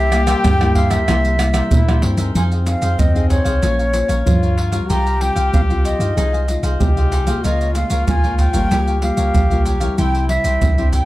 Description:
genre	samba and choro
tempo	94 BPM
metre	4/4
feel	straight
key	F minor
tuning	A4 = 439 Hz
part	breathy baroque flute	melody	0.0-11.1 s	Db5 to Bb5	-22 LUFS	equal	none
part	brilliant trombone	second line	0.0-11.0 s	C4 to Ab4	-25 LUFS	left 4 dB	none
part	cavaquinho	accompaniment	0.0-11.1 s	Eb4 to F5	-29 LUFS	right 1 dB	none
part	nylon-string guitar	accompaniment	0.0-11.1 s	G2 to C5	-24 LUFS	left 2 dB	none
part	punchy sub bass	bass	0.0-11.0 s	Ab1 to Bb2	-19 LUFS	equal	none
part	maracas, pandeiro, tamborim and surdo	percussion	0.1-11.1 s	none	-18 LUFS	right 1 dB	none
room	light reverb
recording	close, detailed microphones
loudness	-14 LUFS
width	side -17 dB against mid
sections	0.0-2.4 A section; 2.4-11.1 B section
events	none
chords	0.0 C7; 2.4 Fm7; 3.6 Bbmadd9; 4.9 Csus4; 6.2 Fm7/C; 7.4 Db6; 8.7 Gm7b5/Db; 10.0 C

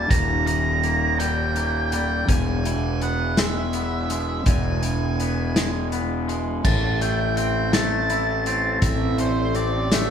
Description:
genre	post-rock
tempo	55 BPM (dotted quarters)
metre	6/8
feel	straight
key	unclear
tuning	A4 = 439 Hz
part	octave-fuzz lead guitar	melody	0.0-10.1 s	C5 to Bb5	-26 LUFS	right 3 dB	distortion
part	twangy electric guitar	arpeggios	0.0-10.1 s	Eb2 to E4	-27 LUFS	left 3 dB	none
part	fuzz fingered electric bass	bass	0.0-10.1 s	Eb1 to A1	-24 LUFS	equal	overdrive
part	loose indie drum kit	drums	0.1-10.1 s	crash cymbal, hi-hat, kick drum, snare drum	-24 LUFS	equal	none
part	warbly tape-like pad	sustained chords	6.6-10.1 s	C4 to E5	-29 LUFS	right 1 dB	chorus, built-in reverb
room	moderate concert hall reverb, RT60 1.8 s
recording	recorded in a church or concert hall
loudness	-20 LUFS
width	side -8 dB against mid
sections	0.0-6.6 A section; 6.6-10.1 B section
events	none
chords	0.0 Eb; 2.3 E; 6.6 Am

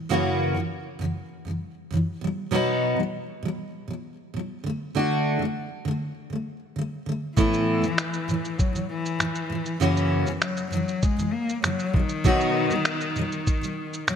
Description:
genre	acoustic pop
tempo	99 BPM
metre	4/4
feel	straight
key	unclear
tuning	A4 = 441 Hz
part	fingerpicked steel-string acoustic guitar	accompaniment	0.0-14.2 s	F#2 to F#4	-25 LUFS	right 1 dB	double-tracked left and right
part	dark cello	second line	7.4-14.2 s	D#3 to A#3	-28 LUFS	left 4 dB	none
part	lo-fi sampler-style drum kit	drums	7.4-14.2 s	finger snaps, kick drum, shaker	-26 LUFS	equal	none
room	moderate plate reverb, RT60 2.7 s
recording	bright 1980s-style digital production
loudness	-23 LUFS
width	side -8 dB against mid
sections	0.0-14.2 A section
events	none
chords	0.1 F#7; 2.2 B; 4.6 D; 7.4 Asus2; 9.8 F#7; 11.9 B

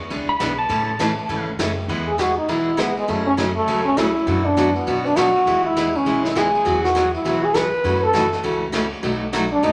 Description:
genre	country, western swing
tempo	201 BPM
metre	4/4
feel	swing 63% on 8ths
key	unclear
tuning	A4 = 439 Hz
part	picked steel-string acoustic guitar	accompaniment	0.1-9.7 s	B2 to G#4	-26 LUFS	equal	none
part	upright bass	bass	0.1-9.7 s	F#1 to B2	-32 LUFS	equal	none
part	vintage brush drum kit	drums	0.1-9.7 s	hi-hat, ride cymbal, snare drum	-31 LUFS	equal	none
part	pedal steel guitar	second line	0.3-1.5 s	A5 to B5	-26 LUFS	equal	none
part	clear French horn	second line	2.1-9.7 s	G#3 to B4	-21 LUFS	equal	none
room	wet large studio reverb, RT60 1.3 s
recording	none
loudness	-20 LUFS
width	mono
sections	0.0-1.9 A section; 1.9-9.7 A section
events	pedal steel guitar solo 0.0-1.9; French horn solo 1.9-9.7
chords	0.0 E7; 0.7 Amaj7; 1.9 E; 3.1 F#madd9; 4.3 Bm/F#; 5.5 E; 6.7 Eadd9; 7.8 F#m7; 9.0 B7

